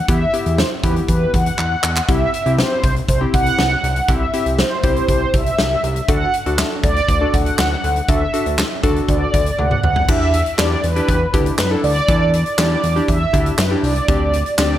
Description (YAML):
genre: synth-pop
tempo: 120 BPM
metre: 4/4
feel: straight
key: E minor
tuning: A4 = 440 Hz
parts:
  - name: mellow synth brass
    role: melody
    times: 0.0-14.8 s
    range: B4 to F#5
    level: -20 LUFS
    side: right 1 dB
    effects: chorus
  - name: warm analog keys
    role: accompaniment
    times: 0.1-14.8 s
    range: B3 to A4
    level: -23 LUFS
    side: left 1 dB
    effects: chorus
  - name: fat analog bass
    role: bass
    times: 0.1-14.8 s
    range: C2 to F#2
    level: -20 LUFS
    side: equal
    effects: none
  - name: huge arena drum kit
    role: drums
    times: 0.1-14.7 s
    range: crash cymbal, handclaps, hi-hat, kick drum, snare drum, toms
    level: -20 LUFS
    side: equal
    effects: none
room: light reverb, studio ambience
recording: none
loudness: -14 LUFS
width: side -12 dB against mid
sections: 0.0-10.1 A section; 10.1-14.8 B section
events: drum fill 1.6-2.1, 9.6-10.1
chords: 0.0 Em; 2.1 C; 6.1 D; 10.1 Em7; 14.1 D7sus4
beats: | 0.09 0.58 1.08 1.58 | 2.08 2.58 3.08 3.58 | 4.08 4.58 5.08 5.58 | 6.08 6.58 7.08 7.58 | 8.09 8.59 9.09 9.59 | 10.09 10.59 11.09 11.59 | 12.09 12.59 13.09 13.59 | 14.09 14.59